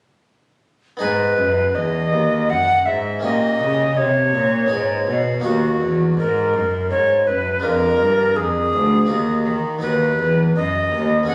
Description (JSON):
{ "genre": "classical, baroque-style sonata movement with continuo", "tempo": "82 BPM", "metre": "3/4", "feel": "straight", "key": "G# minor", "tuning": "A4 = 437 Hz", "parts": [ { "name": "mellow tenor recorder", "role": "melody", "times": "1.0-11.3 s", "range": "F#4 to F#5", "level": "-21 LUFS", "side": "equal", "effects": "none" }, { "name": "harpsichord", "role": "accompaniment", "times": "1.0-11.3 s", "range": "D2 to G#4", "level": "-28 LUFS", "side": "equal", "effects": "none" }, { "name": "rich cello", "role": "bass", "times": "1.0-11.3 s", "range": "D2 to D#3", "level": "-23 LUFS", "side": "equal", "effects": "none" } ], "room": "moderate recital hall reverb, RT60 1.5 s", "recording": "recorded on a phone in the room, club reverb, compression", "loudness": "-19 LUFS", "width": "mono", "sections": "1.0-11.3 A section", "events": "none", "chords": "1.0 G#m; 3.2 Gdim/Bb; 4.7 G#m; 5.4 D#m; 7.6 Ddim/F; 9.1 D#m; 9.8 B/D#" }